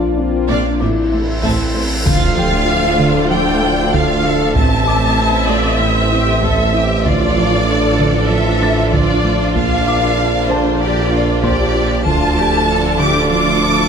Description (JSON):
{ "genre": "cinematic, hybrid orchestral and electronic film score", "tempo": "96 BPM", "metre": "4/4", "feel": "straight", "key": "D minor", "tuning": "A4 = 439 Hz", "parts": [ { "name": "dark French horn section", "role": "sustained chords", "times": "0.0-13.9 s", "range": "A3 to F4", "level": "-24 LUFS", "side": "left 5 dB", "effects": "none" }, { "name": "phased analog pad", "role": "sustained chords", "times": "0.0-13.9 s", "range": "F3 to E5", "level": "-24 LUFS", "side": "equal", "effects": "phaser, chorus" }, { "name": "warm trombone section", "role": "sustained chords", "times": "0.0-13.9 s", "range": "F2 to E4", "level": "-27 LUFS", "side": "right 4 dB", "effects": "none" }, { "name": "soft round pluck", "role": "arpeggios", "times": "0.0-13.8 s", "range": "D3 to F4", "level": "-24 LUFS", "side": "right 3 dB", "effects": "chorus, ping-pong delay" }, { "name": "soft dub sub bass", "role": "bass", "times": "0.0-13.9 s", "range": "D1 to Bb1", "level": "-23 LUFS", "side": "equal", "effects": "none" }, { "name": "cymbal swell and impact", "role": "sound effects", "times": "1.0-4.6 s", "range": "none", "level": "-24 LUFS", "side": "equal", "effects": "none" }, { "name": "warm grand piano", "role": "texture", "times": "0.0-13.9 s", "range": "G4 to A6", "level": "-29 LUFS", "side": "left 3 dB", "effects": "ping-pong delay" }, { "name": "dark symphonic violin section", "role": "melody", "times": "0.5-13.9 s", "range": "C5 to D6", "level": "-20 LUFS", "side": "left 3 dB", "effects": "none" }, { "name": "warm symphonic violin section", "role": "second line", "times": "0.5-13.9 s", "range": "A4 to D6", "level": "-23 LUFS", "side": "right 2 dB", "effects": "none" }, { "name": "warm symphonic viola section", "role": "accompaniment", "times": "0.5-13.9 s", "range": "A3 to E5", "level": "-22 LUFS", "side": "right 1 dB", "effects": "none" }, { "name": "clear symphonic double bass section", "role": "bass", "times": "0.5-13.9 s", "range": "A1 to D2", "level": "-22 LUFS", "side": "right 2 dB", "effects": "none" }, { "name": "clear tuba", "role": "bass", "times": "0.5-13.9 s", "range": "A1 to D2", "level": "-23 LUFS", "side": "right 5 dB", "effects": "none" }, { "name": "warm symphonic cello section", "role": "bass", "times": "0.5-13.9 s", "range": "A2 to A4", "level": "-24 LUFS", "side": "right 2 dB", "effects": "none" }, { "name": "taiko ensemble", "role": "drums", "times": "1.4-12.6 s", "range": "none", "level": "-22 LUFS", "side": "equal", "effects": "none" } ], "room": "moderate scoring stage reverb, RT60 1.9 s", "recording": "none", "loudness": "-12 LUFS", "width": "side -7 dB against mid", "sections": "0.0-2.1 A section; 2.1-13.9 B section", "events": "cymbal swell 1.0-2.1; impact 2.1-4.6", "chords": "0.0 Bb; 0.8 Am; 2.1 Dm; 4.6 Am; 7.1 Dm/A; 9.6 Bb; 12.1 Dm" }